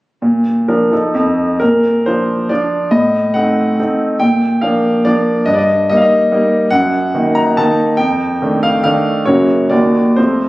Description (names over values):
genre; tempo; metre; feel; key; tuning
classical, romantic triple-time dance for piano with dotted rhythms; 123-153 BPM; 3/4; rubato; Bb major; A4 = 440 Hz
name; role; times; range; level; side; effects
bright grand piano; solo; 0.2-10.5 s; Eb2 to Bb5; -11 LUFS; equal; none
room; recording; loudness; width
moderate recital hall reverb, RT60 1.4 s; recorded on a phone in the room, club reverb, compression; -11 LUFS; side -18 dB against mid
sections
0.2-1.6 A section; 1.6-10.5 B section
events
none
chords
0.2 Bb; 0.9 F7; 1.6 Bb; 2.9 Adim7; 4.2 Bb; 5.5 Eb/G; 6.7 Ebm/Gb; 8.0 F13; 9.3 Gb; 9.7 Ebm